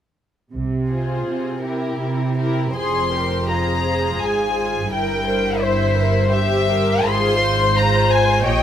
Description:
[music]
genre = classical, slow romantic movement for string orchestra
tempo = 83 BPM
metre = 3/4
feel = uneven beats, rubato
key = F minor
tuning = A4 = 439 Hz
[part]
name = dark symphonic double bass section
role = bass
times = 0.5-8.6 s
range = F1 to C2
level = -24 LUFS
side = right 3 dB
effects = none
[part]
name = warm symphonic cello section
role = bass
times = 0.5-8.6 s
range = F2 to C3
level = -23 LUFS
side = right 2 dB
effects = none
[part]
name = warm symphonic violin section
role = melody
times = 0.9-8.6 s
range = Bb4 to C6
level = -22 LUFS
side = left 4 dB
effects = none
[part]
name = rich symphonic violin section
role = second line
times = 0.9-8.6 s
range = E4 to E5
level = -25 LUFS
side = left 3 dB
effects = none
[part]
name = dark symphonic viola section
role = accompaniment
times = 0.9-8.6 s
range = E4 to Db5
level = -24 LUFS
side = equal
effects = none
[sound]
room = moderate scoring stage reverb, RT60 1.9 s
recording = close, detailed microphones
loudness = -17 LUFS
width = side -10 dB against mid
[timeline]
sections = 0.5-2.8 A section; 2.8-8.6 B section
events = none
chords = 0.5 Fm/C; 1.6 C7; 2.8 Fm; 4.9 C7/G; 7.0 Fm/Ab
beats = | 0.54 1.26 1.99 | 2.75 3.49 4.20 | 4.91 5.61 6.30 | 7.04 7.74 8.45

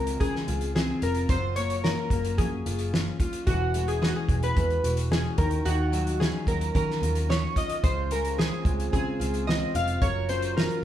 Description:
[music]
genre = indie pop, bedroom pop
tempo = 110 BPM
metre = 4/4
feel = straight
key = Db major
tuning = A4 = 440 Hz
[part]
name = chorused retro synth keys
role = melody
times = 0.0-10.8 s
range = F#4 to F5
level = -30 LUFS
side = equal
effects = none
[part]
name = picked steel-string acoustic guitar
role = accompaniment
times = 0.0-10.8 s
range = Db3 to Bb4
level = -33 LUFS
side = left 2 dB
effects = vibrato effect
[part]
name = vintage muted picked electric bass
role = bass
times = 0.0-10.7 s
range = E1 to Eb3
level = -29 LUFS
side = equal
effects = none
[part]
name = loose indie drum kit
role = drums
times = 0.1-10.8 s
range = hi-hat, kick drum, snare drum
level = -28 LUFS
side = equal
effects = none
[part]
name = mellow tonewheel organ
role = accompaniment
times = 7.8-10.8 s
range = Gb3 to C5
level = -36 LUFS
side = right 5 dB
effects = slow rotary speaker
[sound]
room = moderate large studio reverb, RT60 0.8 s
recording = band playing live in one room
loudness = -24 LUFS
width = side -11 dB against mid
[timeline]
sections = 0.0-10.8 A section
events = none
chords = 0.0 Dbmaj7; 1.3 Gbmaj7; 3.5 E69; 5.4 Ebm9; 7.8 Dbmaj7; 10.0 Gbmaj7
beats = 0.20 0.75 | 1.29 1.84 2.38 2.93 | 3.48 4.02 4.57 5.11 | 5.66 6.20 6.75 7.29 | 7.84 8.38 8.93 9.47 | 10.02 10.56

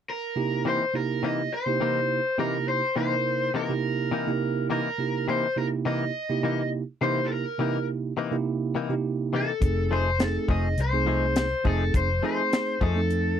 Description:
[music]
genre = straight-eighth soul blues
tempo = 104 BPM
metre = 4/4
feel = straight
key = unclear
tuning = A4 = 440 Hz
[part]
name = raw garage guitar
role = melody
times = 0.1-13.4 s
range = A4 to D#5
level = -27 LUFS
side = left 2 dB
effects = overdrive
[part]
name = bell-like tine electric piano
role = accompaniment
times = 0.4-13.4 s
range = C3 to Bb4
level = -28 LUFS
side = right 5 dB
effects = none
[part]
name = direct-recorded clean electric guitar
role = stabs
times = 0.7-13.0 s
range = C3 to G#4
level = -29 LUFS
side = left 6 dB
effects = wide subtle chorus
[part]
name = vintage muted fingered electric bass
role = bass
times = 9.6-13.4 s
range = F1 to F2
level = -26 LUFS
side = left 1 dB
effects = none
[part]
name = tight funk drum kit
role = drums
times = 9.6-13.2 s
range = hi-hat, kick drum, snare drum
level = -24 LUFS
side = left 1 dB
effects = none
[sound]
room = little or no reverb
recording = dry, close 1970s-style studio recording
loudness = -24 LUFS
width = side -8 dB against mid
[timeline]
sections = 0.4-13.4 A section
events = none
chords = 0.4 C7#9; 9.6 F7#9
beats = | 0.36 0.94 1.52 2.10 | 2.67 3.25 3.83 4.41 | 4.99 5.57 6.14 6.72 | 7.30 7.88 8.46 9.04 | 9.62 10.20 10.78 11.36 | 11.94 12.52 13.10

